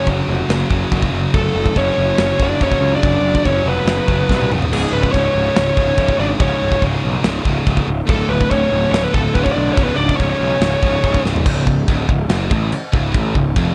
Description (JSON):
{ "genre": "heavy metal", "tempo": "142 BPM", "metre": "4/4", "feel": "straight", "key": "unclear", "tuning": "A4 = 437 Hz", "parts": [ { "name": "high-gain lead guitar", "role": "melody", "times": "0.0-11.2 s", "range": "G#4 to D5", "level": "-22 LUFS", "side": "equal", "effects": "distortion, plate reverb" }, { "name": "high-gain lead guitar", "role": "second line", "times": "0.0-11.2 s", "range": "G#3 to D4", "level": "-28 LUFS", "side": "equal", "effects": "distortion, plate reverb, tape echo" }, { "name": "scooped high-gain guitar", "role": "riff", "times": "0.0-13.7 s", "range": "C#2 to F#3", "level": "-27 LUFS", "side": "equal", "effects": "distortion" }, { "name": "sludgy distorted guitar", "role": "riff", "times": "0.0-13.7 s", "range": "C#2 to F#3", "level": "-25 LUFS", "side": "equal", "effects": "overdrive" }, { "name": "fuzz picked electric bass", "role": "bass", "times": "0.1-13.7 s", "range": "C#1 to C#2", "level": "-22 LUFS", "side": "equal", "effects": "overdrive" }, { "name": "modern studio drum kit", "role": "drums", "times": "0.1-13.7 s", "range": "china cymbal, crash cymbal, kick drum, snare drum, toms", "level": "-22 LUFS", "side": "equal", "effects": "vintage 12-bit sampler grit" } ], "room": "light reverb", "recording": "none", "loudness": "-16 LUFS", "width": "mono", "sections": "0.0-11.5 A section; 11.5-13.7 B section", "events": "drum fill 4.3-4.7, 11.2", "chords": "0.0 F#5; 4.5 C#5; 8.1 D5; 9.8 C#5; 11.5 C#" }